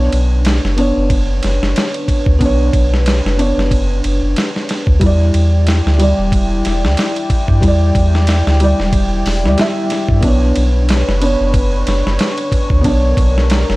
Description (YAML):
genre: trip hop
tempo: 92 BPM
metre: 4/4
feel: swing 56% on 16ths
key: B minor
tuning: A4 = 439 Hz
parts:
  - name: felt-muted upright piano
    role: accompaniment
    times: 0.0-13.8 s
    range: G3 to E5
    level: -19 LUFS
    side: equal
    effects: tremolo, vintage 12-bit sampler grit, tape echo
  - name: dark analog pad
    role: sustained chords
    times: 0.0-13.8 s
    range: D4 to G5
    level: -22 LUFS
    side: left 1 dB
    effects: chorus
  - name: soft dub sub bass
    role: bass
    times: 0.0-13.8 s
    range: E1 to G2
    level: -14 LUFS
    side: equal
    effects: none
  - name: dusty soul sampler-style drum kit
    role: drums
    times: 0.1-13.8 s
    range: hi-hat, kick drum, ride cymbal, snare drum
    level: -17 LUFS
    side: equal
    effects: vintage 12-bit sampler grit
room: little or no reverb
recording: vinyl crackle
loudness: -11 LUFS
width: side -20 dB against mid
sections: 0.0-13.8 A section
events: none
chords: 0.0 Bmadd9; 5.0 Em7; 10.2 Bmadd9